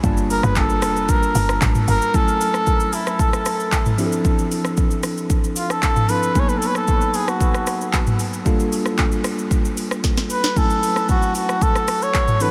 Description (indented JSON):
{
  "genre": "amapiano",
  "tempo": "114 BPM",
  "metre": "4/4",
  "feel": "straight",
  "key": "unclear",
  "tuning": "A4 = 440 Hz",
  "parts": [
    { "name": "tine electric piano", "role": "accompaniment", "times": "0.0-12.5 s", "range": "E3 to A5", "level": "-26 LUFS", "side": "equal", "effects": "none" },
    { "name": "woody log drum bass", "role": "bass", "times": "0.0-2.0 s", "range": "F1 to A1", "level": "-24 LUFS", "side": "equal", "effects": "none" },
    { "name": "afro-pop drum kit", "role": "drums", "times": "0.0-12.5 s", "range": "handclaps, hi-hat, kick drum, rim click, shaker, snare drum, toms", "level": "-22 LUFS", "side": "equal", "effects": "none" },
    { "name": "trumpet with cup mute", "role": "melody", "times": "0.3-12.5 s", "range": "E4 to C#5", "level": "-24 LUFS", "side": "equal", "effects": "analog delay" }
  ],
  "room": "moderate huge ambient reverb, RT60 7.8 s",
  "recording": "dreamy mix soaked in reverb",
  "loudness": "-19 LUFS",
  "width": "mono",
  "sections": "0.0-2.1 A section; 2.1-12.5 B section",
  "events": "drop 0.0-2.1; drum fill 10.0-10.6",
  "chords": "0.0 Gm9; 2.1 F#m9; 4.0 Dm9; 6.4 G#m9; 8.5 Gm9; 10.6 F#m9",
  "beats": "| 0.04 0.56 1.09 1.62 | 2.14 2.67 3.19 3.72 | 4.25 4.77 5.30 5.83 | 6.35 6.88 7.41 7.93 | 8.46 8.98 9.51 10.04 | 10.56 11.09 11.62 12.14"
}